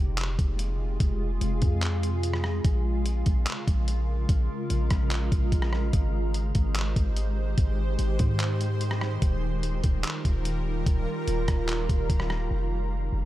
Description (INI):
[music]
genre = hip hop, atmospheric cloud-rap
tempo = 146 BPM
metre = 4/4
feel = half-time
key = Bb dorian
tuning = A4 = 438 Hz
[part]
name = shimmering ambient pad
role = sustained chords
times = 0.0-13.3 s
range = C3 to C5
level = -32 LUFS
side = equal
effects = chorus, built-in reverb, sidechain pumping
[part]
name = warm 808-style bass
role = bass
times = 0.0-13.3 s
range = Eb1 to Ab2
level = -27 LUFS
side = equal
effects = none
[part]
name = trip hop sampler-style drum kit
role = drums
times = 0.2-12.4 s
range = handclaps, hi-hat, kick drum, rim click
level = -27 LUFS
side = equal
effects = none
[sound]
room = little or no reverb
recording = none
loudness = -24 LUFS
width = side -15 dB against mid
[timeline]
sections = 0.0-12.5 A section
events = none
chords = 0.0 Fm; 2.6 Bbm7; 5.9 Abmaj7; 9.2 Ebadd9; 12.5 Fm